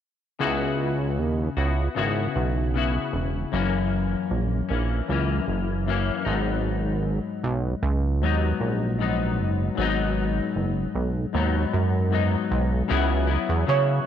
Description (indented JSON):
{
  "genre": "indie pop",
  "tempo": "77 BPM",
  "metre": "4/4",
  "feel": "straight",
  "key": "unclear",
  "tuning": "A4 = 442 Hz",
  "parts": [
    { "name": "semi-hollow electric guitar", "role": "accompaniment", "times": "0.4-14.1 s", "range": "F#2 to F#4", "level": "-26 LUFS", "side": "left 7 dB", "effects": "ensemble chorus, warbly pitch drift" },
    { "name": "chorused synth bass", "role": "bass", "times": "0.4-14.0 s", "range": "E1 to C#3", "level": "-24 LUFS", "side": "right 2 dB", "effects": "none" },
    { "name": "soft electric-piano-like synth keys", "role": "melody", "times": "13.7-14.1 s", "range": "C#5", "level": "-22 LUFS", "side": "right 15 dB", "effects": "lush chorus, slapback echo" }
  ],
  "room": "light reverb, digital ambience",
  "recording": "1960s-style stereo with parts hard left and right",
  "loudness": "-22 LUFS",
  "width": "side -9 dB against mid",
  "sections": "0.4-12.9 A section; 12.9-14.1 B section",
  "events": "none",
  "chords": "0.4 C#m11; 3.5 F#7; 6.3 G#m7; 12.9 C#m7"
}